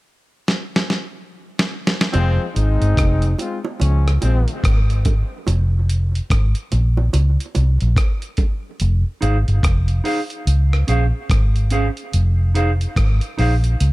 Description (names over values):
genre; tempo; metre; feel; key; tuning
dub reggae; 72 BPM; 4/4; swing 61% on 16ths; F minor; A4 = 440 Hz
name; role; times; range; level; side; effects
dusty soul sampler-style drum kit; drums; 0.5-13.9 s; hi-hat, kick drum, rim click, snare drum; -20 LUFS; equal; none
clear trombone section; second line; 2.1-4.6 s; F3 to F4; -24 LUFS; left 2 dB; tape echo
bongos; percussion; 2.1-8.6 s; none; -30 LUFS; right 5 dB; tape echo
vintage muted fingered electric bass; bass; 2.2-13.9 s; F1 to Db2; -16 LUFS; equal; none
mellow electric guitar; accompaniment; 9.2-13.5 s; Db4 to F5; -24 LUFS; right 2 dB; tape echo
room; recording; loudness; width
little or no reverb; none; -16 LUFS; side -20 dB against mid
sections
0.0-2.1 A section; 2.1-8.8 B section; 8.8-13.9 C section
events
drum fill 0.5-2.1; part muted 8.8-13.9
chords
0.0 N.C.; 2.1 Fm7; 3.8 Db; 5.5 Fm; 7.1 Bbmadd9; 8.8 Fm7; 10.5 Dbmaj7; 12.1 Fm7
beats
0.47 1.30 | 2.14 2.97 3.80 4.63 | 5.47 6.30 7.13 7.97 | 8.80 9.63 10.46 11.30 | 12.13 12.96 13.79